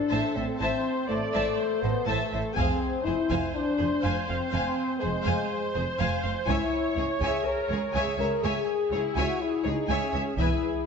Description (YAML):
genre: cinematic, epic orchestral film score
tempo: 123 BPM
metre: 4/4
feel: straight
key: unclear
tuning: A4 = 439 Hz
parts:
  - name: rich symphonic viola section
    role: accompaniment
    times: 0.0-10.9 s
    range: E4 to D5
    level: -34 LUFS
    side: right 2 dB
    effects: none
  - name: warm French horn section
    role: sustained chords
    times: 0.0-10.9 s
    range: Ab3 to C#5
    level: -29 LUFS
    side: left 4 dB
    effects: none
  - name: rich symphonic violin section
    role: melody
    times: 0.1-10.6 s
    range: C5 to A5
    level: -34 LUFS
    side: left 1 dB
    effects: none
  - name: rich studio violin section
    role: second line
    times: 0.1-10.6 s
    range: Ab4 to F5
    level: -34 LUFS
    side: left 2 dB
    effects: none
  - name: clear symphonic cello section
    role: bass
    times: 0.1-10.5 s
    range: C#2 to A2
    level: -34 LUFS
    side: right 4 dB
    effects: none
  - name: rich studio double bass section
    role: bass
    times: 0.1-10.5 s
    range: E1 to C#2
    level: -35 LUFS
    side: right 4 dB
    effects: none
  - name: taiko ensemble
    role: drums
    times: 2.6-3.5, 6.5-10.9 s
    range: none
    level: -32 LUFS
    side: equal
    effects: none
room: wet scoring stage reverb, RT60 1.6 s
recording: nothing above 7.8 kHz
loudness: -25 LUFS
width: side -6 dB against mid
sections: 0.0-10.9 A section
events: none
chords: 0.0 Am; 2.6 Fm; 6.5 C#m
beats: 0.11 | 0.60 1.09 1.58 2.07 | 2.56 3.05 3.54 4.03 | 4.52 5.01 5.50 5.99 | 6.47 6.96 7.46 7.94 | 8.43 8.92 9.41 9.90 | 10.38